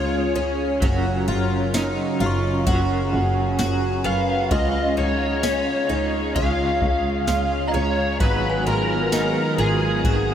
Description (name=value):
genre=dream pop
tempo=65 BPM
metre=4/4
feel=straight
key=unclear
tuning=A4 = 440 Hz
part: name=overdriven slide guitar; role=melody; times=0.0-10.3 s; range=G#4 to E#5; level=-25 LUFS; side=equal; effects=ensemble chorus, analog delay
part: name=clean electric guitar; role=accompaniment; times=0.0-10.3 s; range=G#2 to A#4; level=-30 LUFS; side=right 2 dB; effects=tremolo, analog chorus
part: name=lush unison pad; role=sustained chords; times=0.0-10.3 s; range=C#3 to A#4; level=-26 LUFS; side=equal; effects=chorus
part: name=picked twelve-string acoustic guitar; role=arpeggios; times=0.0-10.3 s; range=B3 to F#4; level=-26 LUFS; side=left 1 dB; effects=analog chorus, analog delay
part: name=clear double bass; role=bass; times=0.0-10.3 s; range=F#1 to C#2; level=-25 LUFS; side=equal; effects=none
part: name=soft vintage rhythm box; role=drums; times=0.8-10.3 s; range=kick drum, ride cymbal, snare drum, tambourine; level=-26 LUFS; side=equal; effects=none
part: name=synth chime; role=texture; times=2.3-10.3 s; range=G#5 to C#6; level=-35 LUFS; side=equal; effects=ensemble chorus, tremolo, analog delay
room=wet huge ambient reverb, RT60 7.7 s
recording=dreamy mix soaked in reverb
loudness=-19 LUFS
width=side -9 dB against mid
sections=0.0-10.3 A section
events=none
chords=0.0 C#; 0.8 F#maj7; 4.5 C#; 8.2 G#m7